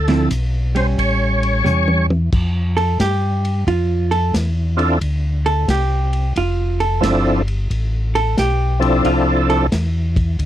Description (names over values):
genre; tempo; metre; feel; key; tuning
soul jazz organ trio; 89 BPM; 4/4; swing 66% on 8ths; D dorian; A4 = 440 Hz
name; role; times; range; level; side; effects
percussive tonewheel organ; melody; 0.0-9.7 s; F3 to C#5; -17 LUFS; equal; slow rotary speaker, overdrive, chorus vibrato
tonewheel organ; bass; 0.0-10.5 s; F1 to G2; -18 LUFS; equal; chorus vibrato, stopped rotary speaker
vintage hollow-body jazz guitar; accompaniment; 0.1-9.6 s; D3 to A4; -20 LUFS; right 3 dB; none
warm soul drum kit; drums; 0.1-10.5 s; crash cymbal, hi-hat, kick drum, ride cymbal, snare drum, toms; -25 LUFS; equal; none
room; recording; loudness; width
little or no reverb; dry, close 1970s-style studio recording; -15 LUFS; side -12 dB against mid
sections
0.0-2.3 A section; 2.3-10.5 B section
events
drum fill 1.7-2.3; hollow-body jazz guitar solo 2.3-10.5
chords
0.0 Dm9; 1.0 A7; 2.3 Dm9